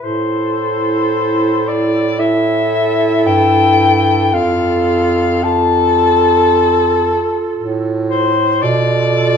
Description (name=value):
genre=classical, lyrical piece for single-reed quartet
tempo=56 BPM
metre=4/4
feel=rubato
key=A minor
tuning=A4 = 439 Hz
part: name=mellow soprano saxophone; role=melody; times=0.0-9.4 s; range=C5 to A5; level=-15 LUFS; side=left 6 dB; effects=none
part: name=warm alto saxophone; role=second line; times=0.0-9.4 s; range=A4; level=-18 LUFS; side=right 6 dB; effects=none
part: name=dark clarinet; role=accompaniment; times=0.0-9.4 s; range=E4 to F4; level=-19 LUFS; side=left 1 dB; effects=none
part: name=warm bass clarinet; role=bass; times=0.0-9.4 s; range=F2 to B2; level=-19 LUFS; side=right 3 dB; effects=none
room=moderate recital hall reverb, RT60 1.6 s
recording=minimal, uncompressed stereo recording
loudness=-12 LUFS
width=side -7 dB against mid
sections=0.0-9.4 A section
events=none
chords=0.0 Am; 4.3 F; 8.6 Bm7b5